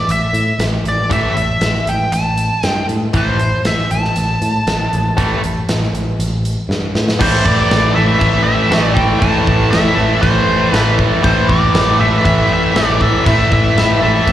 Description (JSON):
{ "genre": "hard rock", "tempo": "118 BPM", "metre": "4/4", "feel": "straight", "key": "A minor", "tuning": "A4 = 440 Hz", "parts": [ { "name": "nasal lead guitar with a parked wah", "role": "melody", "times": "0.0-14.3 s", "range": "C5 to A5", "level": "-17 LUFS", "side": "equal", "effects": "overdrive, slapback echo" }, { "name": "picked electric bass", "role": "bass", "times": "0.1-14.3 s", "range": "A1 to A2", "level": "-17 LUFS", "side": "equal", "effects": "none" }, { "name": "big rock drum kit", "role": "drums", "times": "0.1-14.3 s", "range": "crash cymbal, hi-hat, kick drum, snare drum", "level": "-19 LUFS", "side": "equal", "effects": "none" }, { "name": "tight distorted guitar", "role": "riff", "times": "1.1-14.3 s", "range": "A2 to A3", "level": "-15 LUFS", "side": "equal", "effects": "distortion, slapback echo" } ], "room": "small room ambience", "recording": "live gig heard through the venue's PA, recital hall reverb", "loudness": "-12 LUFS", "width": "side -12 dB against mid", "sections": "0.0-7.2 A section; 7.2-14.3 B section", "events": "drum fill 6.7-7.2", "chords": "0.0 A5" }